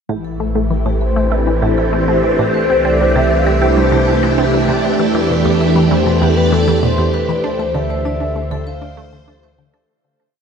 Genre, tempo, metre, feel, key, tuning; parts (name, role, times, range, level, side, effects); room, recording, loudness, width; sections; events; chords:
ambient, sequencer-driven space music; 98 BPM; 4/4; straight; A minor; A4 = 438 Hz
phased string machine; sustained chords; 0.1-9.9 s; E3 to D5; -16 LUFS; right 1 dB; ensemble chorus, phaser
vibraphone with hard mallets; arpeggios; 0.1-9.9 s; G4 to D5; -28 LUFS; right 2 dB; auto-pan, tape echo
resonant blip pluck; riff; 0.1-9.8 s; E2 to A4; -21 LUFS; right 1 dB; phaser, tape echo
fat analog bass; bass; 0.1-9.9 s; A1 to E2; -19 LUFS; equal
mellow horn-like synth lead; melody; 1.0-9.6 s; A4 to F5; -21 LUFS; left 2 dB; chorus, vintage 12-bit sampler grit, tape echo
wet huge ambient reverb, RT60 8.2 s; dreamy mix soaked in reverb; -12 LUFS; side -6 dB against mid
0.1-9.9 A section
fade-in on vibraphone 0.1-9.9; fade-out 6.6-9.9
0.1 Am7; 2.5 Cmaj7; 5.0 Em7; 7.4 Dm7